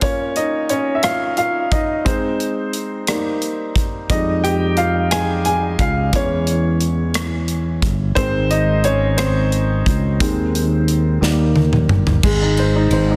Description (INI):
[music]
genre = six-eight pop ballad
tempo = 59 BPM (dotted quarters)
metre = 6/8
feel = straight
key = Ab major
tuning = A4 = 440 Hz
[part]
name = clear upright piano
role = accompaniment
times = 0.0-13.2 s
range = Eb3 to Ab5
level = -22 LUFS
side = equal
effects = none
[part]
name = modern studio drum kit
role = drums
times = 0.0-13.1 s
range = crash cymbal, hi-hat, kick drum, ride cymbal, rim click, snare drum, toms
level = -23 LUFS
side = equal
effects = soft clipping on snare
[part]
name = sustaining fretless electric bass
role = bass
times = 4.1-13.2 s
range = G1 to F2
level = -21 LUFS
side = equal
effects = none
[sound]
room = light reverb, small room ambience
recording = dense, heavily limited modern master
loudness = -18 LUFS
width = mono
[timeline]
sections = 0.0-12.2 A section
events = upright piano solo 0.0-12.2; drum fill 11.2-12.2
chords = 0.0 Bbm; 2.1 Ab; 3.1 Eb; 4.1 Fm7; 6.1 Dbm/Fb; 8.2 Ab; 10.2 Ab/Eb; 11.2 Eb; 12.2 Ab